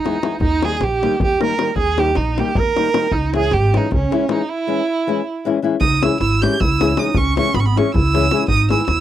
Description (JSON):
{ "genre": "balkan folk, Balkan wedding band", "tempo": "312 BPM (eighths)", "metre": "7/8", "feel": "straight", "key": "C# dorian sharp4", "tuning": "A4 = 439 Hz", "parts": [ { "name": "rich violin", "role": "melody", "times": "0.0-9.0 s", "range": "C#4 to G6", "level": "-21 LUFS", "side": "right 4 dB", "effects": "none" }, { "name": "warm clarinet", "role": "second line", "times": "0.0-9.0 s", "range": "B3 to A#4", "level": "-23 LUFS", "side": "right 6 dB", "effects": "none" }, { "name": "nylon-string guitar", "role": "accompaniment", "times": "0.0-8.8 s", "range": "D#3 to G#4", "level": "-20 LUFS", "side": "left 6 dB", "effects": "none" }, { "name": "davul", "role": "percussion", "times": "0.1-9.0 s", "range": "none", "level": "-22 LUFS", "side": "left 2 dB", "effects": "none" }, { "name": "upright bass", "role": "bass", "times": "0.4-9.0 s", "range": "G#1 to D#2", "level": "-20 LUFS", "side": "equal", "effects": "none" } ], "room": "little or no reverb", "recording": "dry, close 1970s-style studio recording", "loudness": "-15 LUFS", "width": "side -12 dB against mid", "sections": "0.0-5.8 A section; 5.8-9.0 B section", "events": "break 4.5-5.8", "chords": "0.4 D#; 3.1 C#m; 8.5 G#m", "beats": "0.01 0.21 | 0.40 0.60 0.79 0.98 1.18 1.37 1.57 | 1.76 1.95 2.15 2.34 2.53 2.73 2.92 | 3.11 3.31 3.50 3.69 3.88 4.08 4.27 | 4.46 4.65 4.85 5.04 5.23 5.42 5.61 | 5.81 6.00 6.19 6.38 6.57 6.76 6.95 | 7.14 7.34 7.53 7.72 7.91 8.10 8.29 | 8.48 8.67 8.86" }